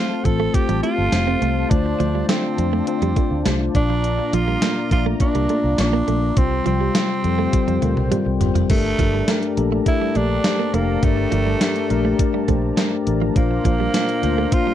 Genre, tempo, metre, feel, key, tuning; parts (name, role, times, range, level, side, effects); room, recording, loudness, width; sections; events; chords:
1980s-style pop; 103 BPM; 4/4; straight; A4 = 440 Hz
raspy tenor saxophone; melody; 0.0-14.7 s; A3 to A4; -24 LUFS; right 3 dB; slapback echo
mellow tine electric piano; accompaniment; 0.0-14.7 s; G2 to F5; -22 LUFS; left 6 dB; auto-pan
warm analog pad; sustained chords; 0.0-14.7 s; F4 to Bb5; -32 LUFS; equal; chorus
direct-recorded clean electric guitar; riff; 0.0-14.7 s; F3 to C4; -27 LUFS; right 12 dB; analog chorus, slapback echo
vintage muted fingered electric bass; bass; 0.3-14.5 s; F1 to F2; -22 LUFS; right 1 dB
gated 80s digital drum machine; drums; 0.3-14.7 s; crash cymbal, hi-hat, kick drum, snare drum, toms; -20 LUFS; right 1 dB; gated reverb, gated reverb snare
little or no reverb; dry, close 1970s-style studio recording; -17 LUFS; side -11 dB against mid
0.0-8.7 A section; 8.7-14.7 B section
drum fill 7.5-8.7
0.0 F; 1.7 Dm7; 3.7 Bb; 6.4 Gmadd9